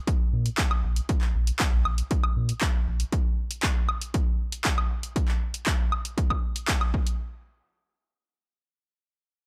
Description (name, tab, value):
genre	acid house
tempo	118 BPM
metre	4/4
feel	straight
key	unclear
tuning	A4 = 440 Hz
part	electronic kick drum	drums	0.1-7.0 s	none	-28 LUFS	equal	overdrive
part	punchy analog drum machine	drums	0.1-7.2 s	handclaps, hi-hat, woodblock	-32 LUFS	equal	overdrive
part	saturated sub bass	bass	0.3-3.0 s	Bb1 to Bb2	-28 LUFS	equal	sidechain pumping
room	little or no reverb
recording	dry, gritty hardware recording, transformer saturation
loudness	-26 LUFS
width	mono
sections	0.0-7.2 A section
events	none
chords	none